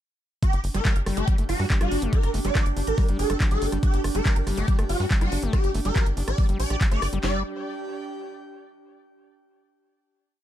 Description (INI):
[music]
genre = psychedelic trance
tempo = 141 BPM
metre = 4/4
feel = straight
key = G harmonic minor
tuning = A4 = 436 Hz
[part]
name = swarming rave lead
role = melody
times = 0.4-7.4 s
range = F#4 to D5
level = -30 LUFS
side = equal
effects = chorus, phaser, sidechain pumping, ping-pong delay
[part]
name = evolving wavetable pad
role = sustained chords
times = 0.7-7.2 s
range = D4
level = -36 LUFS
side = right 2 dB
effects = chorus, built-in reverb, sidechain pumping
[part]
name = drum and bass drum kit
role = drums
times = 0.4-7.3 s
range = handclaps, kick drum, snare drum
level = -22 LUFS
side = equal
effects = overdrive
[part]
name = drum and bass drum kit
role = drums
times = 0.4-7.2 s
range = handclaps, hi-hat, rim click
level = -32 LUFS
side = equal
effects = overdrive
[part]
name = airy breathy pad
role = texture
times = 0.4-8.9 s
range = D4 to G5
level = -37 LUFS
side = right 3 dB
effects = chorus, sidechain pumping
[part]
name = tight sequencer bass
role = bass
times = 0.5-7.4 s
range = G1 to G2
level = -27 LUFS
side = equal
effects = none
[part]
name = overdriven acid bass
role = riff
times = 0.7-7.4 s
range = F#3 to G4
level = -33 LUFS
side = moving between left 6 dB and right 4 dB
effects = distortion, auto-pan, sidechain pumping, digital delay
[sound]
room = little or no reverb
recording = dark, warm production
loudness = -21 LUFS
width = side -12 dB against mid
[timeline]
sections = 0.4-7.2 drop; 7.2-8.9 final chord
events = drop 0.4-7.2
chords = 0.4 G5